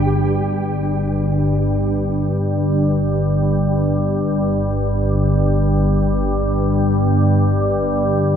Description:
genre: ambient.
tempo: free time.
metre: none.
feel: none.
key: unclear.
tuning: A4 = 443 Hz.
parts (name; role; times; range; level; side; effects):
organ-like drone; drone; 0.0-8.4 s; G1 to G2; -16 LUFS; equal; ensemble chorus, built-in reverb.
room: wet cathedral reverb, RT60 6.2 s.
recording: dark, warm production.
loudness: -16 LUFS.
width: side -8 dB against mid.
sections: 0.1-8.4 A section.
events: none.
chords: none.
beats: free time.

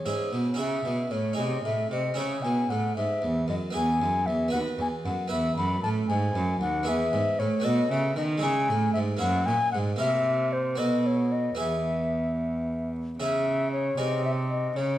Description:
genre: classical, baroque-style sonata movement with continuo.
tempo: 76 BPM (dotted quarters).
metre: 6/8.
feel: straight.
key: C# minor, E major from 6.9 s.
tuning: A4 = 435 Hz.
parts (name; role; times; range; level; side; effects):
baroque flute; melody; 0.0-15.0 s; C5 to B5; -28 LUFS; left 3 dB; none.
harpsichord; accompaniment; 0.0-15.0 s; D#2 to C#5; -30 LUFS; right 2 dB; none.
rich cello; bass; 0.1-15.0 s; D#2 to D#3; -28 LUFS; right 1 dB; none.
room: wet recital hall reverb, RT60 1.4 s.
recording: none.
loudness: -24 LUFS.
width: side -13 dB against mid.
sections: 0.6-13.2 A section; 13.2-15.0 A section.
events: none.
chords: 0.0 C#m; 1.4 G#; 2.2 C#m; 3.7 E; 4.5 B/D#; 5.3 E; 7.7 B7; 8.4 C#m; 9.2 F#7; 10.0 C7; 10.8 B5; 11.6 E; 13.2 C#m; 14.0 G#/B#.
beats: | 0.59 1.39 | 2.18 2.96 | 3.75 4.53 | 5.31 6.09 | 6.87 7.65 | 8.43 9.21 | 10.00 10.79 | 11.59 12.39 | 13.19 13.98 | 14.78.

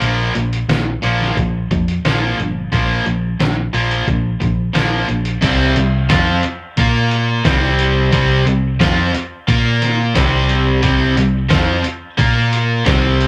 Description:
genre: classic rock.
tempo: 89 BPM.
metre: 4/4.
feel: straight.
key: unclear.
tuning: A4 = 440 Hz.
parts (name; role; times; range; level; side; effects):
crunchy overdriven guitar; riff; 0.0-13.3 s; Bb2 to Bb4; -19 LUFS; equal; spring reverb.
hollow-body short-scale picked electric bass; bass; 0.0-13.3 s; G1 to Bb2; -20 LUFS; equal; none.
lo-fi sampler-style drum kit; drums; 0.0-13.3 s; crash cymbal, hi-hat, kick drum, snare drum; -21 LUFS; equal; none.
room: wet studio reverb, RT60 0.6 s.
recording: rough rehearsal-room recording, tube saturation.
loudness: -16 LUFS.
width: mono.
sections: 0.0-5.4 A section; 5.4-13.3 B section.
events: none.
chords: 0.0 Bb5; 5.4 C5; 6.8 Bb5; 7.5 C5; 9.5 Bb5; 10.2 C5; 12.2 Bb5.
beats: | 0.02 0.69 1.37 2.05 | 2.72 3.40 4.08 4.75 | 5.42 6.10 6.78 7.45 | 8.12 8.80 9.48 10.15 | 10.83 11.51 12.18 12.86.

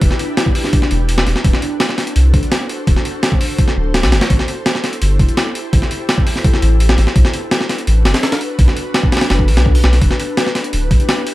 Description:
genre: drum and bass, jungle.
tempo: 168 BPM.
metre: 4/4.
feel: straight.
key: E minor.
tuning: A4 = 440 Hz.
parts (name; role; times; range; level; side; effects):
ethereal airy pad; sustained chords; 0.0-11.3 s; D4 to C5; -23 LUFS; left 1 dB; ensemble chorus, built-in reverb, vintage 12-bit sampler grit.
soft dub sub bass; bass; 0.0-11.0 s; D1 to C2; -13 LUFS; equal; none.
breakbeat sampler-style drum kit; drums; 0.0-11.3 s; hi-hat, kick drum, snare drum; -14 LUFS; equal; none.
room: little or no reverb.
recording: vinyl crackle.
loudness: -12 LUFS.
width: side -17 dB against mid.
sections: 0.0-10.0 A section; 10.0-11.3 A section.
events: drop 0.0-10.0, 10.0-11.3.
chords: 0.0 Em7; 1.4 D7; 4.3 Am7; 7.2 Bm7; 10.0 Em7.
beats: | 0.01 0.37 0.73 1.09 | 1.44 1.80 2.16 2.52 | 2.87 3.23 3.59 3.94 | 4.30 4.66 5.01 5.37 | 5.73 6.09 6.44 6.80 | 7.16 7.51 7.87 8.23 | 8.59 8.94 9.30 9.66 | 10.02 10.37 10.73 11.09.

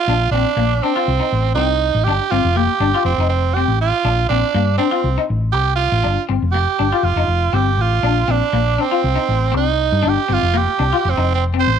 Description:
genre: highlife guitar band.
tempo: 120 BPM.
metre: 4/4.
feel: straight.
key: Bb major.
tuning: A4 = 439 Hz.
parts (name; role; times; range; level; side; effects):
breathy tenor saxophone; melody; 0.0-11.8 s; C4 to C5; -18 LUFS; right 8 dB; none.
clean electric guitar; accompaniment; 0.1-11.7 s; Bb3 to F4; -21 LUFS; left 13 dB; ensemble chorus.
hollow-body short-scale fingered electric bass; bass; 0.1-11.8 s; F1 to G2; -18 LUFS; left 1 dB; none.
room: moderate spring reverb, RT60 1.1 s, small room ambience.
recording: 1960s-style stereo with parts hard left and right.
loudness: -15 LUFS.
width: side -8 dB against mid.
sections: 0.1-11.8 A section.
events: none.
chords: 0.1 Bb; 1.1 Cm; 2.1 Gm; 3.0 F; 4.0 Bb; 5.0 Cm; 6.0 G5; 7.0 F; 8.0 Bb; 9.0 Cm; 10.0 Gm; 11.0 F.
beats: | 0.07 0.56 1.06 1.56 | 2.05 2.55 3.05 3.54 | 4.04 4.54 5.04 5.54 | 6.04 6.53 7.03 7.53 | 8.03 8.53 9.04 9.54 | 10.04 10.54 11.04 11.54.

